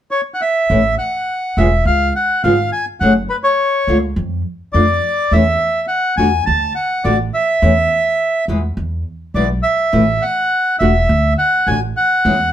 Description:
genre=tango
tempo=104 BPM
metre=4/4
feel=rubato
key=A major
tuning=A4 = 440 Hz
part: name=bandoneon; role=melody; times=0.1-12.5 s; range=B4 to A5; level=-15 LUFS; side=equal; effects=none
part: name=nylon-string guitar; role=accompaniment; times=0.7-12.3 s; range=B2 to G#4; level=-17 LUFS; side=left 1 dB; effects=none
part: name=upright bass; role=bass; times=0.7-12.5 s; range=E1 to F2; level=-18 LUFS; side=equal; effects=none
room=moderate studio reverb, RT60 0.8 s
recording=band playing live in one room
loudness=-13 LUFS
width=side -11 dB against mid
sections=0.7-12.5 A section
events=none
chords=0.0 N.C.; 0.7 A; 1.9 C#; 3.0 F#m; 4.2 Dm/F; 5.3 A5/E; 6.5 D; 7.6 N.C.; 8.8 E5; 9.9 A5; 11.1 D

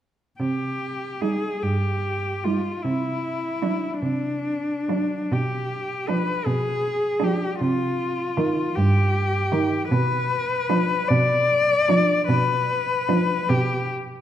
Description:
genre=classical, lyrical piece for cello ensemble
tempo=44-53 BPM (dotted quarters)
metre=6/8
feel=rubato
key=unclear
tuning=A4 = 443 Hz
part: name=muted cello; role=melody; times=0.4-13.9 s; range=D4 to D5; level=-24 LUFS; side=left 3 dB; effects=none
part: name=muted cello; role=bass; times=0.4-14.2 s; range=G2 to C3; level=-24 LUFS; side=right 2 dB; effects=none
part: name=muted cello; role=second line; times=1.2-13.4 s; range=D4 to Eb4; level=-30 LUFS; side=right 6 dB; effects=none
part: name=muted cello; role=accompaniment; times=1.2-13.4 s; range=Eb3 to G3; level=-27 LUFS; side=right 1 dB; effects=none
room=wet recital hall reverb, RT60 1.7 s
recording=none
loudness=-21 LUFS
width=side -10 dB against mid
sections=0.4-14.2 A section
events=none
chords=0.4 Cm; 2.8 D7/C; 5.3 G7/B; 7.6 Cm; 9.9 Bdim

